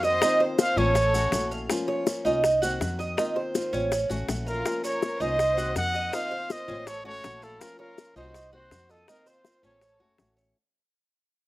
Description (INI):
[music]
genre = latin, Cuban son and guajira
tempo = 162 BPM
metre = 4/4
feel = straight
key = Bb harmonic minor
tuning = A4 = 440 Hz
[part]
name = breathy trumpet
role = melody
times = 0.0-1.5, 4.5-10.3 s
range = A4 to Gb5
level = -28 LUFS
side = equal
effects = slapback echo
[part]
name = rich studio violin section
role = second line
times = 0.0-1.5, 4.5-10.3 s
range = E4 to Eb5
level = -38 LUFS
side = equal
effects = slapback echo
[part]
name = flamenco guitar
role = accompaniment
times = 0.0-10.6 s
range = Eb3 to Gb4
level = -33 LUFS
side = left 3 dB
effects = slapback echo
[part]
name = Cuban tres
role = arpeggios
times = 0.0-10.6 s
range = Db4 to F5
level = -27 LUFS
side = right 2 dB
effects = none
[part]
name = upright bass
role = bass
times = 0.0-10.5 s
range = F#1 to F2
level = -31 LUFS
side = equal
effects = none
[part]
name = bongos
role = percussion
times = 0.0-10.4 s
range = none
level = -27 LUFS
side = left 5 dB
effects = none
[part]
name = maracas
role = percussion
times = 0.0-10.6 s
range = none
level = -39 LUFS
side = right 1 dB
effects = none
[sound]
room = little or no reverb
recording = recorded outdoors, with no room sound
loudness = -23 LUFS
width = side -17 dB against mid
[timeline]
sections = 0.0-10.6 A section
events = fade-out 0.0-10.6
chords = 0.2 F7sus4; 1.0 A6; 1.7 Bbm; 2.4 Cm7b5; 3.2 F7sus4; 3.9 A6; 4.7 Bbm; 5.4 Cm7b5; 6.1 F7sus4; 6.9 A6; 7.6 Bbm; 8.3 Cm7b5; 9.1 F7sus4; 9.8 A6